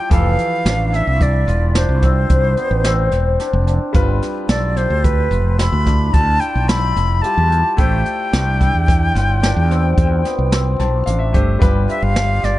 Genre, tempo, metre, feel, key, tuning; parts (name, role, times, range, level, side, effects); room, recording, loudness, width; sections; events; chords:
progressive instrumental, band music in an uneven meter; 110 BPM; 7/4; straight; G mixolydian; A4 = 440 Hz
jazz flute; melody; 0.0-12.6 s; B4 to B5; -20 LUFS; left 1 dB; tape echo
bright grand piano; accompaniment; 0.0-12.6 s; E3 to A5; -26 LUFS; left 2 dB
cimbalom; arpeggios; 0.0-12.6 s; E3 to A4; -23 LUFS; equal
mellow fretless electric bass; bass; 0.1-12.6 s; E1 to E2; -16 LUFS; equal
jazz brush drum kit; drums; 0.1-12.6 s; hi-hat, kick drum, snare drum; -18 LUFS; equal
light reverb; echo-heavy mix, nothing above 10.8 kHz; -14 LUFS; side -16 dB against mid
0.0-11.6 A section
grand piano fill 10.5-11.6
0.1 Fmaj7; 3.9 G7; 7.8 Am7; 11.6 G7